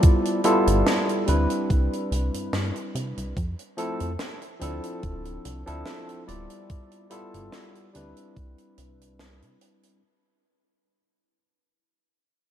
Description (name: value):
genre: vaporwave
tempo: 72 BPM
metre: 4/4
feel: swing 54% on 16ths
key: C major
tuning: A4 = 440 Hz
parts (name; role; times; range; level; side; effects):
- barky tine electric piano; accompaniment; 0.0-10.0 s; F3 to D5; -26 LUFS; equal; wide subtle chorus, tape echo
- electronic kick drum; drums; 0.0-8.5 s; none; -20 LUFS; equal; none
- tight funk drum kit; drums; 0.0-10.0 s; hi-hat, snare drum; -31 LUFS; right 1 dB; gated reverb
- chorused synth bass; bass; 0.7-9.6 s; D1 to C3; -27 LUFS; equal; none
room: light reverb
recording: none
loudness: -23 LUFS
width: side -10 dB against mid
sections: 0.0-10.0 A section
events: fade-out 0.0-10.0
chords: 0.0 G13; 1.7 Cmaj9; 3.4 Fmaj7; 4.6 Dm9; 6.7 G13; 8.4 Cmaj9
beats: | 0.03 0.86 1.70 2.53 | 3.36 4.20 5.03 5.86 | 6.70 7.53 8.36 9.20